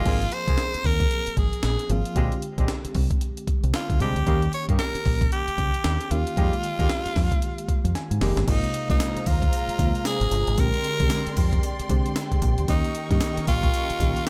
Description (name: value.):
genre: R&B, new jack swing.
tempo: 114 BPM.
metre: 4/4.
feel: swing 60% on 16ths.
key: unclear.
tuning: A4 = 440 Hz.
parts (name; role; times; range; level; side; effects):
raspy tenor saxophone; melody; 0.0-14.3 s; Eb4 to Db5; -31 LUFS; equal; none.
FM electric piano with tremolo; accompaniment; 0.0-14.3 s; C3 to Ab5; -33 LUFS; equal; phaser.
mellow horn section; stabs; 0.0-8.4 s; G3 to Ab4; -36 LUFS; equal; none.
deep dub fingered electric bass; bass; 0.0-14.1 s; F1 to Ab2; -28 LUFS; equal; none.
breakbeat sampler-style drum kit; drums; 0.1-14.3 s; crash cymbal, hi-hat, kick drum, snare drum, tambourine; -27 LUFS; equal; gated reverb.
dark studio string section; sustained chords; 8.5-14.3 s; Ab3 to Db6; -37 LUFS; equal; none.
room: digital ambience.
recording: none.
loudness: -24 LUFS.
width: mono.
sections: 0.1-8.5 A section; 8.5-14.3 B section.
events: FM electric piano fill 7.7-8.5; drum fill 8.0-8.5.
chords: 0.1 Ab69; 2.2 Bb13 (rootless); 4.3 Eb7; 6.4 Fm11; 8.5 Ab69; 10.6 Bb13; 12.7 Eb7.